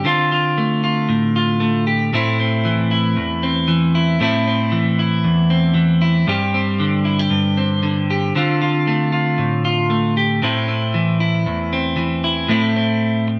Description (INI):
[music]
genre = highlife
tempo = 116 BPM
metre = 4/4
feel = swing 55% on 16ths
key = A minor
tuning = A4 = 444 Hz
[part]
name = clean electric guitar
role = solo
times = 0.0-13.4 s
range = E2 to G4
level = -18 LUFS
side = equal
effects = lush chorus, slapback echo
[sound]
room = moderate booth ambience, RT60 0.2 s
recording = none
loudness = -18 LUFS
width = mono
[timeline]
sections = 0.0-2.1 A section; 2.1-13.4 A section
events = none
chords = 0.1 Dm7; 2.1 Am; 6.3 Gsus4; 8.3 Dm7; 10.4 Am